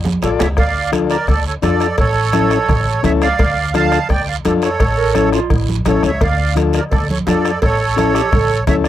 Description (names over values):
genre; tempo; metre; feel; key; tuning
latin, cumbia; 170 BPM; 4/4; straight; D harmonic minor; A4 = 441 Hz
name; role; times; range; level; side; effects
upright bass; bass; 0.0-8.9 s; A1 to F2; -20 LUFS; equal; none
timbales and cowbell; percussion; 0.0-8.8 s; none; -25 LUFS; right 3 dB; none
congas; percussion; 0.1-8.8 s; none; -22 LUFS; right 2 dB; none
accordion; melody; 0.2-8.9 s; A4 to A5; -18 LUFS; right 5 dB; light tremolo tuning
combo organ; accompaniment; 0.2-8.9 s; C#4 to D5; -16 LUFS; left 8 dB; none
bombo; percussion; 0.2-8.9 s; none; -21 LUFS; left 1 dB; none
guiro; percussion; 0.2-8.9 s; none; -32 LUFS; right 11 dB; none
breathy clarinet; second line; 5.0-5.8, 8.0-8.6 s; E4 to Bb4; -20 LUFS; right 8 dB; none
room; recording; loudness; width
little or no reverb; dry, close 1970s-style studio recording; -13 LUFS; side -12 dB against mid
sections
0.6-8.9 A section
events
drum fill 0.0-0.6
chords
0.0 Dm; 2.0 A; 3.4 Dm; 4.8 A; 6.2 Dm; 7.6 A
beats
0.22 | 0.57 0.93 1.28 1.63 | 1.98 2.34 2.69 3.04 | 3.39 3.75 4.10 4.45 | 4.80 5.15 5.51 5.86 | 6.21 6.56 6.92 7.27 | 7.62 7.97 8.32 8.67